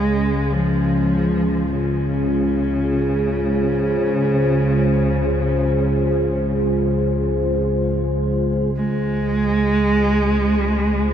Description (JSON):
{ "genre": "dark ambient drone", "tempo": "free time", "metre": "none", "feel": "none", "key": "C# major", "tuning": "A4 = 440 Hz", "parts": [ { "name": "dark cello", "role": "melody", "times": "0.0-11.1 s", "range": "C#3 to G#3", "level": "-21 LUFS", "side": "right 1 dB", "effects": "shimmer reverb, diffuse ambient delay" }, { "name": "dark analog pad", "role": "sustained chords", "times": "0.5-11.1 s", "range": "G#3 to B#4", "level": "-22 LUFS", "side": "right 1 dB", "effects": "chorus, shimmer reverb" }, { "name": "analog drone", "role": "drone", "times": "0.0-11.1 s", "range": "C#2 to C#3", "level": "-22 LUFS", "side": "left 1 dB", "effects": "chorus" } ], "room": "moderate huge ambient reverb, RT60 9.0 s", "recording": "none", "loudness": "-17 LUFS", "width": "side -9 dB against mid", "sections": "0.0-8.8 A section; 8.8-11.1 B section", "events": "none", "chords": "0.0 C#5" }